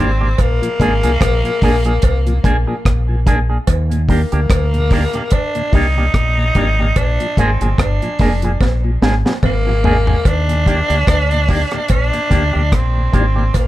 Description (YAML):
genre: roots reggae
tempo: 73 BPM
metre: 4/4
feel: swing 57% on 16ths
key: Eb major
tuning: A4 = 441 Hz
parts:
  - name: growling tenor saxophone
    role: melody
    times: 0.0-13.7 s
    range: Bb3 to Eb4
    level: -20 LUFS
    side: equal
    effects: dub echo
  - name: electric guitar with an envelope filter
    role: accompaniment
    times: 0.0-13.4 s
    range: Bb3 to Ab4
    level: -23 LUFS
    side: right 2 dB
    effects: dub echo
  - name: mellow tonewheel organ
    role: accompaniment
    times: 0.0-13.4 s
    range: Eb2 to D4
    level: -24 LUFS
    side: left 2 dB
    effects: chorus vibrato, slow rotary speaker
  - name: deep dub fingered electric bass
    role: bass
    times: 0.0-13.7 s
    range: F1 to Eb2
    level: -16 LUFS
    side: equal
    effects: none
  - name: deep reggae drum kit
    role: drums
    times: 0.4-13.7 s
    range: hi-hat, kick drum, rim click, snare drum, toms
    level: -16 LUFS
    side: equal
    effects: none
  - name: cowbell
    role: percussion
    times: 0.4-13.7 s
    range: none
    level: -25 LUFS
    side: right 4 dB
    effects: none
room: light reverb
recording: none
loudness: -13 LUFS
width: side -15 dB against mid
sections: 0.0-13.7 A section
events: drum fill 8.6-10.3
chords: 0.4 Bb7; 3.7 Ebmaj7; 7.0 Bb7; 10.3 Ebmaj7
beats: | 0.39 1.21 2.03 2.85 | 3.68 4.50 5.32 6.14 | 6.96 7.79 8.61 9.43 | 10.25 11.07 11.90 12.72 | 13.54